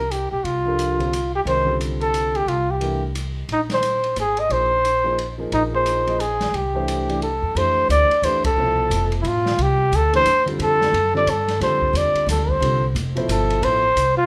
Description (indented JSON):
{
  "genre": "modal jazz",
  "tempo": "177 BPM",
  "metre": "3/4",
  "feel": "swing 62% on 8ths",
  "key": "F lydian from 7.6 s",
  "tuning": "A4 = 440 Hz",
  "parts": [
    { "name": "breathy trumpet", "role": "melody", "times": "0.0-14.3 s", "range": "Eb4 to Eb5", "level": "-22 LUFS", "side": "equal", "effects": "none" },
    { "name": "upright bass", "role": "bass", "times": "0.0-14.3 s", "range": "F1 to G2", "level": "-27 LUFS", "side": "equal", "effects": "none" },
    { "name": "open jazz drum kit", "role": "drums", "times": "0.1-14.1 s", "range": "hi-hat, kick drum, ride cymbal, snare drum", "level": "-34 LUFS", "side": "equal", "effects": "none" },
    { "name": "warm grand piano", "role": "accompaniment", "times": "0.7-13.8 s", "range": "B2 to Eb5", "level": "-30 LUFS", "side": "equal", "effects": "none" }
  ],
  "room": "light reverb",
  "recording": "band playing live in one room",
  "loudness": "-20 LUFS",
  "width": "mono",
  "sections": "0.0-7.6 A section; 7.6-14.3 B section",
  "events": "band accent 8.4",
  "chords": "0.0 C9sus4; 3.5 Bb9sus4; 6.5 C69; 7.6 Fmaj9",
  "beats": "0.11 | 0.45 0.79 1.12 | 1.46 1.80 2.14 | 2.48 2.82 3.16 | 3.50 3.83 4.17 | 4.51 4.85 5.19 | 5.53 5.87 6.20 | 6.54 6.88 7.22 | 7.56 7.89 8.23 | 8.57 8.91 9.25 | 9.59 9.92 10.26 | 10.60 10.94 11.27 | 11.61 11.95 12.28 | 12.62 12.96 13.29 | 13.63 13.97"
}